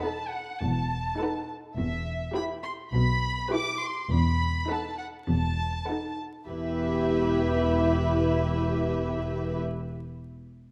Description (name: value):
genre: cinematic, playful, whimsical film cue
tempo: 103 BPM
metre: 4/4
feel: straight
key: E minor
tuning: A4 = 439 Hz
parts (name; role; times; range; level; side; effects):
- muted chamber violin section; melody; 0.0-9.6 s; E5 to D6; -36 LUFS; equal; none
- muted chamber violin section; second line; 0.0-9.6 s; B4 to G5; -37 LUFS; equal; none
- muted symphonic viola section; accompaniment; 0.0-9.6 s; D#4 to A4; -33 LUFS; equal; none
- muted chamber cello section; bass; 0.6-9.6 s; E2 to B2; -33 LUFS; equal; none
- muted chamber double bass section; bass; 0.6-9.6 s; E1 to B1; -34 LUFS; equal; none
room: moderate scoring stage reverb, RT60 1.5 s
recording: vinyl crackle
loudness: -28 LUFS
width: mono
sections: 0.0-6.5 A section; 6.5-8.8 B section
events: none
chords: 0.0 B7; 1.8 Em; 4.1 B7/E; 6.5 Em